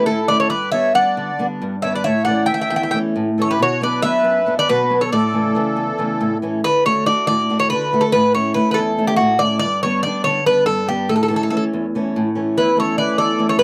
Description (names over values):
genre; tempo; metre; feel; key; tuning
greek folk, Greek bouzouki band; 279 BPM (eighths); 7/8; straight; unclear; A4 = 438 Hz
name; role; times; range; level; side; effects
Greek bouzouki; melody; 0.0-13.6 s; F#4 to G5; -19 LUFS; equal; none
accordion; second line; 0.0-6.4, 12.6-13.6 s; E4 to E5; -27 LUFS; equal; light tremolo tuning
picked old ladder-braced acoustic guitar; accompaniment; 0.0-13.6 s; E2 to F#4; -22 LUFS; equal; none
room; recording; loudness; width
little or no reverb; dry, close 1970s-style studio recording; -18 LUFS; mono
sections
0.0-6.6 A section; 6.6-13.6 B section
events
speeding up 0.0-13.6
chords
0.5 G; 2.0 A; 3.6 Bm; 5.1 A; 6.6 D; 8.1 A; 9.6 G; 11.1 A